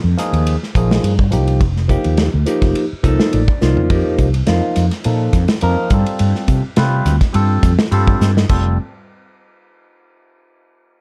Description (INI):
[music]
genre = electric jazz fusion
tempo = 104 BPM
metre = 4/4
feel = swing 54% on 16ths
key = F mixolydian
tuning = A4 = 440 Hz
[part]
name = mellow fretless electric bass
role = bass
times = 0.0-8.8 s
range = F1 to C3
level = -18 LUFS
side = equal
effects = lush chorus
[part]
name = barky tine electric piano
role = accompaniment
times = 0.2-8.8 s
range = F3 to D5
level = -22 LUFS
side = equal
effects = overdrive, phaser, plate reverb
[part]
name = modern studio drum kit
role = drums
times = 0.2-8.6 s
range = crash cymbal, hi-hat, kick drum, ride cymbal, snare drum, toms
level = -20 LUFS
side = equal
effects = none
[sound]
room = light reverb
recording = dark, warm production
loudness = -15 LUFS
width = mono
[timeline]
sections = 0.0-3.9 A section; 3.9-8.5 B section; 8.5-10.8 C section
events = tine electric piano fill 3.0-3.9; drum fill 3.6, 8.2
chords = 0.0 Bb9sus4; 1.6 F9sus4; 5.9 G9sus4; 8.5 F